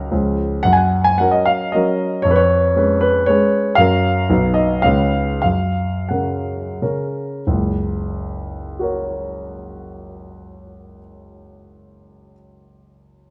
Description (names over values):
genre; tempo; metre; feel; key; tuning
classical, romantic triple-time dance for piano with dotted rhythms; 82-124 BPM; 3/4; rubato; F# major; A4 = 440 Hz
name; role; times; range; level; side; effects
warm grand piano; solo; 0.0-13.3 s; F#1 to G#5; -18 LUFS; equal; none
room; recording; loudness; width
moderate scoring stage reverb, RT60 1.6 s; close, detailed microphones; -18 LUFS; mono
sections
0.0-7.5 A section; 7.5-11.3 B section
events
slowing down 3.0-7.5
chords
0.1 C#; 0.7 F#; 2.3 C#7/E#; 3.8 F#; 4.3 B; 4.8 C#7; 5.4 F#